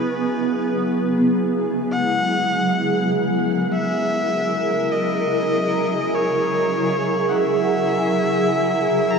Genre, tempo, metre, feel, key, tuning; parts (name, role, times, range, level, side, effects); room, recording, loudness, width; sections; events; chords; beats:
ambient; 50 BPM; 3/4; straight; C# dorian; A4 = 438 Hz
warm electric violin; melody; 0.0-9.2 s; B4 to A#5; -24 LUFS; left 1 dB; tape echo
granular cloud pad; sustained chords; 0.0-9.2 s; C#3 to A#4; -20 LUFS; right 1 dB; built-in reverb, lush chorus
vibraphone with soft mallets; arpeggios; 0.8-9.2 s; F#3 to F#5; -27 LUFS; left 2 dB; tape echo
wet huge ambient reverb, RT60 9.1 s; dreamy mix soaked in reverb; -18 LUFS; side -5 dB against mid
0.0-9.2 A section
0.0 C#m7
0.13 1.33 | 2.53 3.73 4.93 | 6.13 7.33 8.53